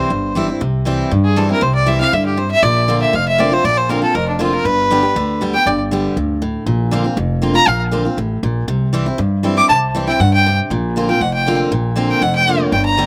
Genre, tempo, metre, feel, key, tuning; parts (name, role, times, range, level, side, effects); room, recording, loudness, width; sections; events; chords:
bluegrass; 238 BPM; 4/4; straight; C mixolydian; A4 = 441 Hz
clear fiddle; melody; 0.0-13.1 s; D4 to D6; -18 LUFS; equal; slapback echo
picked steel-string acoustic guitar; accompaniment; 0.0-13.1 s; F2 to G4; -21 LUFS; equal; slapback echo
upright bass; bass; 0.1-13.1 s; F1 to G2; -21 LUFS; equal
little or no reverb; recorded outdoors, with no room sound; -16 LUFS; mono
0.6-13.1 A section
fiddle solo 0.6-13.1
0.0 C; 2.6 Bbadd9; 4.7 G; 6.7 Bbadd9; 8.7 C; 10.7 Bbadd9